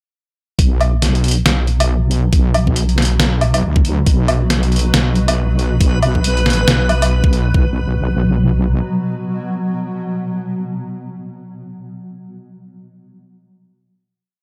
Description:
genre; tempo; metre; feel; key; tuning
deep dubstep; 138 BPM; 4/4; swing 59% on 16ths, half-time; unclear; A4 = 440 Hz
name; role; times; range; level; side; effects
granular cloud pad; sustained chords; 2.0-11.8 s; B2 to F#3; -25 LUFS; equal; built-in reverb
wobble bass; bass; 0.6-8.8 s; B1 to D2; -18 LUFS; equal; chorus
electronic kick drum; drums; 0.6-7.6 s; none; -16 LUFS; equal; none
trip hop sampler-style drum kit; drums; 0.6-7.4 s; hi-hat, snare drum, woodblock; -20 LUFS; equal; none
backwards swelling texture; texture; 4.9-7.6 s; B4; -27 LUFS; equal; built-in reverb
room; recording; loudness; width
little or no reverb; dry, gritty hardware recording; -16 LUFS; mono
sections
0.6-7.5 drop; 7.5-11.0 final chord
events
drop 0.6-7.5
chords
0.6 B5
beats
| 0.59 1.02 1.46 1.89 | 2.33 2.76 3.20 3.63 | 4.07 4.50 4.93 5.37 | 5.80 6.24 6.67 7.11 | 7.54 7.98 8.41 8.85 | 9.28 9.72 10.15 10.59

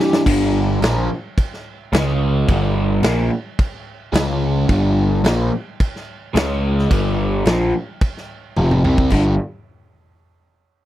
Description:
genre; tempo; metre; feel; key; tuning
blues rock power trio and southern rock; 108 BPM; 4/4; straight; unclear; A4 = 440 Hz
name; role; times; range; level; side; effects
crunchy overdriven guitar; riff; 0.0-9.3 s; F2 to C#4; -19 LUFS; equal; phaser
big rock drum kit; drums; 0.0-9.2 s; crash cymbal, kick drum, snare drum, toms; -21 LUFS; equal; none
fuzz picked electric bass; bass; 0.3-9.4 s; F1 to C#2; -19 LUFS; equal; overdrive
room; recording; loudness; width
little or no reverb; dry, close 1970s-style studio recording; -16 LUFS; side -13 dB against mid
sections
0.3-9.1 A section; 9.1-10.8 B section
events
drum fill 0.0, 8.6-9.1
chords
0.3 G5; 1.9 C#5; 2.5 G5; 4.1 C#5; 4.7 G5; 6.3 C#5; 6.9 G5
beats
| 0.26 0.81 1.36 1.92 | 2.47 3.02 3.58 4.13 | 4.68 5.24 5.79 6.35 | 6.90 7.45 8.01 8.56 | 9.11

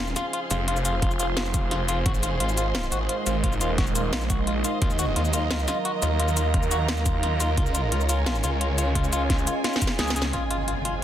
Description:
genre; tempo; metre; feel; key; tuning
dark technical drum and bass; 174 BPM; 4/4; straight; unclear; A4 = 440 Hz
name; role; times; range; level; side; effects
deep dark ambient pad; sustained chords; 0.0-11.0 s; Ab3 to F5; -32 LUFS; right 2 dB; chorus, built-in reverb, sidechain pumping
semi-hollow electric guitar; arpeggios; 0.0-10.9 s; F4 to Ab4; -30 LUFS; left 3 dB; sidechain pumping, tape echo
snarling distorted saw bass; bass; 0.0-10.3 s; Eb1 to Eb2; -26 LUFS; equal; distortion
dark studio string section; texture; 0.0-11.0 s; Gb3 to C6; -31 LUFS; right 3 dB; sidechain pumping
drum and bass drum kit; drums; 0.1-10.9 s; hi-hat, shaker, snare drum; -29 LUFS; equal; none
electronic kick drum; drums; 1.0-9.9 s; none; -25 LUFS; equal; overdrive
impact; sound effects; 10.3-11.0 s; none; -30 LUFS; equal; none
room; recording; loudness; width
light reverb, digital ambience; dense, heavily limited modern master; -22 LUFS; side -11 dB against mid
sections
0.0-10.3 A section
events
drum fill 9.6-10.3; impact 10.3-11.0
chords
0.0 Fm; 2.1 Ebm; 7.6 Db6; 10.3 Fm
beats
0.33 | 0.68 1.02 1.37 1.71 | 2.06 2.40 2.75 3.09 | 3.44 3.78 4.13 4.47 | 4.82 5.16 5.51 5.85 | 6.20 6.54 6.88 7.23 | 7.58 7.92 8.27 8.61 | 8.95 9.30 9.64 9.99 | 10.33 10.68 11.02

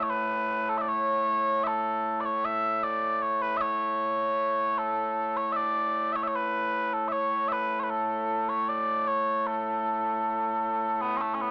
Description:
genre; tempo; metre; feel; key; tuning
scottish traditional, Scottish pipe music; 77 BPM; 2/4; straight; A major; A4 = 440 Hz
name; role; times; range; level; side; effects
mellow small bagpipes; solo; 0.0-11.5 s; A2 to E5; -28 LUFS; equal; cassette tape
room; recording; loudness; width
moderate studio reverb, RT60 0.7 s; home recording on cassette, small speaker sound; -28 LUFS; mono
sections
0.0-11.0 A section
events
none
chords
none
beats
| 0.11 0.89 | 1.67 2.45 | 3.23 4.01 | 4.79 5.57 | 6.35 7.13 | 7.91 8.69 | 9.46 10.24 | 11.02

